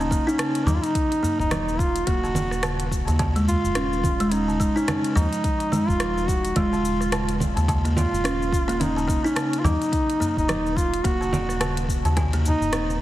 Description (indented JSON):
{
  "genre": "organic downtempo",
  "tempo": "107 BPM",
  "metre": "4/4",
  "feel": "swing 59% on 16ths",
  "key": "Eb minor",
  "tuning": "A4 = 440 Hz",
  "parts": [
    { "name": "warm duduk", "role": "melody", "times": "0.0-13.0 s", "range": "Db4 to Gb4", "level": "-26 LUFS", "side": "equal", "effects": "ping-pong delay" },
    { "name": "buzzing kalimba", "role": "arpeggios", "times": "0.0-13.0 s", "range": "C3 to Eb4", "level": "-26 LUFS", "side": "equal", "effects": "tape echo" },
    { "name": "round analog bass", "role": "bass", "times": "0.0-13.0 s", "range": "Eb1 to Eb2", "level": "-26 LUFS", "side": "equal", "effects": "sidechain pumping" },
    { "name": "organic electronic drum kit", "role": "drums", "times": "0.0-13.0 s", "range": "congas, hi-hat, rim click, shaker", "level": "-29 LUFS", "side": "right 1 dB", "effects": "none" },
    { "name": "electronic kick drum", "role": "drums", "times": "0.1-12.3 s", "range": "none", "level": "-26 LUFS", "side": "equal", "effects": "none" },
    { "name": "udu", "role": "percussion", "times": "0.7-12.7 s", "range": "none", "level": "-31 LUFS", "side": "left 1 dB", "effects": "none" }
  ],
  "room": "moderate recital hall reverb, RT60 1.4 s, digital ambience",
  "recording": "heavily compressed radio sound, multiband compression",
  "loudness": "-20 LUFS",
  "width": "side -14 dB against mid",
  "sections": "0.0-13.0 A section",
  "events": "none",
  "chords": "0.0 Ebm7; 3.2 Dbadd9/Eb; 7.7 Eb7(no3); 12.2 Abadd9/Eb (rootless)",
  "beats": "0.39 | 0.95 1.51 2.07 2.63 | 3.19 3.76 4.32 4.88 | 5.44 6.00 6.56 7.12 | 7.68 8.24 8.80 9.36 | 9.92 10.48 11.04 11.61 | 12.17 12.73"
}